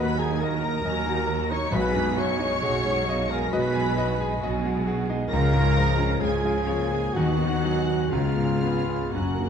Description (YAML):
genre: classical, romantic movement for piano and orchestra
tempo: 58-69 BPM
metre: 4/4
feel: rubato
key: unclear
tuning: A4 = 440 Hz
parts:
  - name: clear grand piano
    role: melody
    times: 0.0-9.5 s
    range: B1 to A#5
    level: -28 LUFS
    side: left 2 dB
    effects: none
  - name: rich symphonic violin section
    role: melody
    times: 0.0-9.5 s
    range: E#6 to C#7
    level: -35 LUFS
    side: left 2 dB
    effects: none
  - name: dark studio violin section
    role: second line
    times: 0.0-9.5 s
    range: E#5 to C#6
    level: -34 LUFS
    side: left 2 dB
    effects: none
  - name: mellow clarinet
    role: second line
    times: 0.0-9.5 s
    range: E#4 to C#5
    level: -32 LUFS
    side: left 2 dB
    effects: none
  - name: mellow hollow concert flute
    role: second line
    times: 0.0-9.5 s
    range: D#5 to B5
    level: -37 LUFS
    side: left 3 dB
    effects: none
  - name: rich symphonic viola section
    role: accompaniment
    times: 0.0-9.5 s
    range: E#3 to A#4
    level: -34 LUFS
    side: right 2 dB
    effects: none
  - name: dark French horn section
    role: sustained chords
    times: 0.0-9.5 s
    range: G#3 to G#4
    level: -32 LUFS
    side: left 3 dB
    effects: none
  - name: mellow trumpet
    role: stabs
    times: 0.0-9.5 s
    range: E#4 to C#5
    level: -33 LUFS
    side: right 2 dB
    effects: none
  - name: rich symphonic cello section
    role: bass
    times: 0.0-9.5 s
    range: D#2 to D#3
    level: -31 LUFS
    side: right 2 dB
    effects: none
  - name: rich symphonic double bass section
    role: bass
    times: 0.0-9.5 s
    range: F#1 to D#2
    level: -29 LUFS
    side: right 3 dB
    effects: none
  - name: timpani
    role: percussion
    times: 9.1-9.5 s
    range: F#2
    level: -34 LUFS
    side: left 2 dB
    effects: none
room: moderate scoring stage reverb, RT60 1.5 s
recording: dark, warm production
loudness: -22 LUFS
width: side -7 dB against mid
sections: 0.0-9.5 A section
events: timpani fill 9.1-9.5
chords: 0.0 D#m; 1.7 G#m7/B; 5.3 C#; 7.1 B/D#; 8.1 C#7